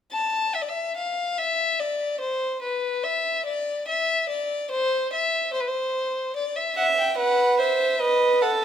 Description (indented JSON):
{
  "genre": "classical, baroque-style fugue for string quartet",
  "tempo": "72 BPM",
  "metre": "4/4",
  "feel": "straight",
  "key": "unclear",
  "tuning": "A4 = 440 Hz",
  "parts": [
    { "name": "rich violin", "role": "melody", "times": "0.1-8.5 s", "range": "B4 to A5", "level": "-24 LUFS", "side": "left 3 dB", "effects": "none" },
    { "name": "dark violin", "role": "second line", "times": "6.8-8.6 s", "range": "A4 to E5", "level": "-20 LUFS", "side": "right 2 dB", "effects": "none" }
  ],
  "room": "moderate recital hall reverb, RT60 1.6 s",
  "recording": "none",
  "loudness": "-22 LUFS",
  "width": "side -9 dB against mid",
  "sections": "0.0-8.6 A section",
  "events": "none",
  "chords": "0.0 N.C.; 6.4 E5; 8.0 B",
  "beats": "0.54 1.37 2.21 | 3.04 3.87 4.70 5.53 | 6.36 7.18 8.01"
}